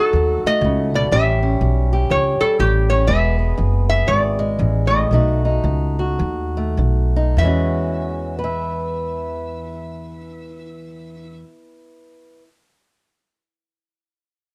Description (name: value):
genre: acoustic country blues, solo or duo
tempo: 98-122 BPM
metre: 4/4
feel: swing 62% on 8ths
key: E major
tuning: A4 = 438 Hz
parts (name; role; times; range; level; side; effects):
- metal-body resonator slide guitar; melody; 0.0-11.4 s; G4 to E5; -22 LUFS; equal; none
- fingerpicked old ladder-braced acoustic guitar; accompaniment; 0.0-12.5 s; E2 to E5; -26 LUFS; equal; none
- upright bass; bass; 0.1-11.4 s; E1 to E2; -21 LUFS; equal; none
room: light reverb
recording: none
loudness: -18 LUFS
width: mono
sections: 0.0-7.4 A section; 7.4-12.3 B section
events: slowing down 3.1-7.4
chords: 0.0 B7; 1.1 A7; 3.1 E7; 5.1 B7; 7.4 E69